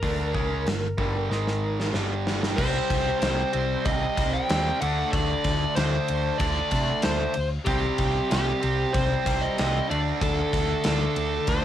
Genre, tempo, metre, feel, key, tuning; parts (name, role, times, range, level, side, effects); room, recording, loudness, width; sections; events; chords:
hard rock; 94 BPM; 4/4; straight; A4 = 441 Hz
dark smooth lead guitar; melody; 0.0-11.6 s; G4 to G5; -28 LUFS; left 2 dB; overdrive, cassette tape
distorted electric guitar; riff; 0.0-11.6 s; G2 to D4; -29 LUFS; right 9 dB; overdrive, cassette tape
overdriven semi-hollow guitar; riff; 0.0-11.6 s; G2 to D4; -32 LUFS; left 9 dB; cassette tape
hollow-body short-scale picked electric bass; bass; 0.0-11.6 s; G1 to C3; -29 LUFS; equal
gated 80s drum kit; drums; 0.0-11.6 s; crash cymbal, hi-hat, kick drum, ride cymbal, snare drum; -29 LUFS; equal; cassette tape
light reverb; home recording on cassette; -22 LUFS; side -11 dB against mid
0.0-2.6 A section; 2.6-11.6 B section
drum fill 1.3-2.6
0.0 Gm; 1.3 Ab5; 1.9 G5; 2.6 Cm; 4.8 D5; 7.7 C5; 9.9 D5